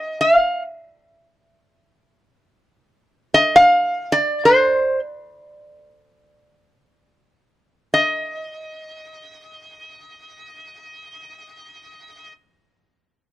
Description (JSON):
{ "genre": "hawaiian", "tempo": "free time", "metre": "none", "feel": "none", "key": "unclear", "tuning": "A4 = 444 Hz", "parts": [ { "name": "metal-body resonator slide guitar", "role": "solo", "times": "0.0-12.3 s", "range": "C5 to F5", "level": "-14 LUFS", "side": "equal", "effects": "none" } ], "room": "light reverb", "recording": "dry, close 1970s-style studio recording", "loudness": "-14 LUFS", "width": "side -14 dB against mid", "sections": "0.0-7.9 A section; 7.9-10.9 B section", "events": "slowing down 3.0-7.9", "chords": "none" }